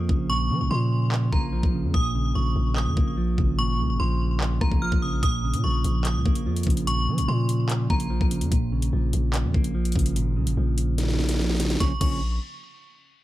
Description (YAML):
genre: hip hop, drill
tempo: 146 BPM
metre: 4/4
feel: half-time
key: Bb minor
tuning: A4 = 440 Hz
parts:
  - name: clean electric guitar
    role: accompaniment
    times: 0.0-12.2 s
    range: Bb2 to Db4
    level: -27 LUFS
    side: right 3 dB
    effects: low-pass filter
  - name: long sustained 808-style bass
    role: bass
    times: 0.0-12.4 s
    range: Ab1 to F3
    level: -25 LUFS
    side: left 1 dB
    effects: none
  - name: drill drum kit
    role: drums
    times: 0.1-12.1 s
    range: crash cymbal, handclaps, hi-hat, kick drum, rim click, snare drum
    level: -26 LUFS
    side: left 1 dB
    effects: none
  - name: metallic FM bell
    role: second line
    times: 0.3-8.1, 11.8-12.2 s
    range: Bb5 to F6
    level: -31 LUFS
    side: equal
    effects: chorus, tremolo, ping-pong delay
room: little or no reverb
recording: none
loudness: -21 LUFS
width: side -15 dB against mid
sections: 0.0-11.8 A section; 11.8-13.2 B section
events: break 0.0-5.2; drum fill 11.0-11.8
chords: 0.0 Bbm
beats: | 0.30 0.71 1.12 1.53 | 1.94 2.35 2.76 3.17 | 3.58 4.00 4.41 4.82 | 5.23 5.64 6.05 6.46 | 6.87 7.28 7.70 8.11 | 8.52 8.93 9.34 9.75 | 10.16 10.57 10.98 11.39 | 11.80 12.21